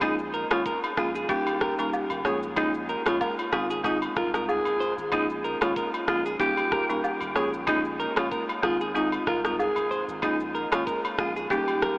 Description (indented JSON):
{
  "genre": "afrobeats",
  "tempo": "94 BPM",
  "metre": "4/4",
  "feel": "swing 55% on 16ths",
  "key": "Bb dorian",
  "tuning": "A4 = 440 Hz",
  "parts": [
    { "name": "breathy alto saxophone", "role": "melody", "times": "0.0-12.0 s", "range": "Eb4 to Ab4", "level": "-28 LUFS", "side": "equal", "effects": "analog delay" },
    { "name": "folk marimba with medium hard mallets", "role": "accompaniment", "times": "0.0-11.7 s", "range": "G3 to F4", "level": "-31 LUFS", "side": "left 1 dB", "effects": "none" },
    { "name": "clean electric guitar", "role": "riff", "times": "0.0-12.0 s", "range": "G4 to Db5", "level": "-31 LUFS", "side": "right 1 dB", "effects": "analog delay" },
    { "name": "punchy sub bass", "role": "bass", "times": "0.0-12.0 s", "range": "Eb1 to C2", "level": "-46 LUFS", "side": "equal", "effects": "none" },
    { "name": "afro-pop drum kit", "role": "drums", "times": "0.0-12.0 s", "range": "kick drum, rim click, shaker", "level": "-33 LUFS", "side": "equal", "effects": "none" },
    { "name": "agogo bells and woodblock", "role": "percussion", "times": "0.0-11.8 s", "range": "none", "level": "-34 LUFS", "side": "equal", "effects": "none" }
  ],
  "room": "wet huge ambient reverb, RT60 6.6 s",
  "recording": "dreamy mix soaked in reverb, AM radio sound",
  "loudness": "-24 LUFS",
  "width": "side -25 dB against mid",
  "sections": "0.0-12.0 A section",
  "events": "none",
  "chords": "0.0 Bbm7; 1.3 Eb7; 2.2 Bbm7; 3.5 Ab6; 5.1 Bbm7; 6.4 Eb7; 7.4 Bbm7; 8.6 Ab6; 10.2 Bbm7"
}